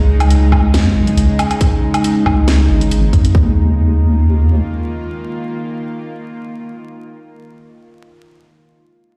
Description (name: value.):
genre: deep dubstep.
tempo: 138 BPM.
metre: 4/4.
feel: swing 53% on 16ths, half-time.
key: unclear.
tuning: A4 = 440 Hz.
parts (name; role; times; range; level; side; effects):
bowed-like drone; sustained chords; 0.0-7.5 s; Db3 to F4; -22 LUFS; equal; built-in reverb.
deep soft wobble bass; bass; 0.0-4.6 s; Ab1 to F2; -14 LUFS; equal; chorus.
garage drum kit; drums; 0.2-3.3 s; hi-hat, snare drum, woodblock; -23 LUFS; equal; none.
electronic kick drum; drums; 0.5-3.4 s; none; -16 LUFS; equal; none.
room: light reverb, digital ambience.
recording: played on a big sound system in a bare room, large studio reverb, vinyl crackle.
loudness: -14 LUFS.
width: mono.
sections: 0.0-3.3 A section; 3.3-6.8 B section.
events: filter sweep on wobble bass 0.0-3.3.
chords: 0.0 Db; 3.3 Eb5.